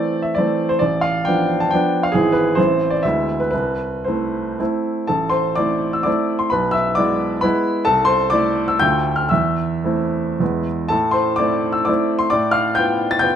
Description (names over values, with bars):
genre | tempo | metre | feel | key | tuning
classical, romantic triple-time dance for piano with dotted rhythms | 104-147 BPM | 3/4 | rubato | A minor | A4 = 440 Hz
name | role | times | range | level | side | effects
clear baby grand piano | solo | 0.0-13.4 s | G#1 to A6 | -16 LUFS | equal | none
room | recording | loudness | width
moderate stone room reverb, RT60 1.4 s | none | -16 LUFS | side -9 dB against mid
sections
0.0-5.1 A section; 5.1-13.4 A section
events
none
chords
0.0 Am; 0.8 Bm7b5/A; 2.1 E/G#; 2.6 Am; 3.0 E7/D; 3.5 Am/C; 5.1 Am; 6.5 E7/B; 7.9 Am/C; 8.8 Dm; 9.3 Am/E; 10.4 E; 10.9 Am; 12.3 Bm7b5/A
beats
0.36 | 0.81 1.26 1.71 | 2.14 2.57 3.04 | 3.53 4.06 4.60 | 5.10 5.59 6.07 | 6.53 6.98 7.44 | 7.87 8.32 8.80 | 9.30 9.85 10.41 | 10.92 11.41 11.89 | 12.33 12.79 13.25